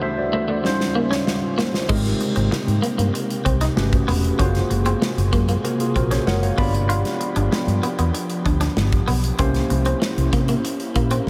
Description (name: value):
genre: polished 1980s jazz-funk pop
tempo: 96 BPM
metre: 4/4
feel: straight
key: unclear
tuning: A4 = 441 Hz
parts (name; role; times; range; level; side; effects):
- barky tine electric piano; accompaniment; 0.0-11.3 s; G3 to B5; -27 LUFS; equal; subtle chorus
- glassy FM pad; sustained chords; 0.0-11.3 s; C3 to F#5; -31 LUFS; equal; ensemble chorus, built-in reverb
- clean electric guitar; riff; 0.0-11.2 s; Ab3 to F4; -29 LUFS; equal; subtle chorus
- modern studio drum kit; drums; 0.6-11.3 s; crash cymbal, hi-hat, kick drum, snare drum; -27 LUFS; equal; none
- vintage muted fingered electric bass; bass; 1.9-11.3 s; Fb1 to C3; -23 LUFS; equal; none
room: moderate huge ambient reverb, RT60 8.9 s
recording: dreamy mix soaked in reverb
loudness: -21 LUFS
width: mono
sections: 0.0-1.9 A section; 1.9-11.3 B section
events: break 0.0-1.9; drum fill 0.6-1.9; tine electric piano fill 6.0-6.9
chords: 0.0 D9; 0.6 Eb13; 1.9 Abmaj9; 3.8 Gmaj9#11; 4.4 Gbmaj9#11; 6.6 G7; 9.4 C7b9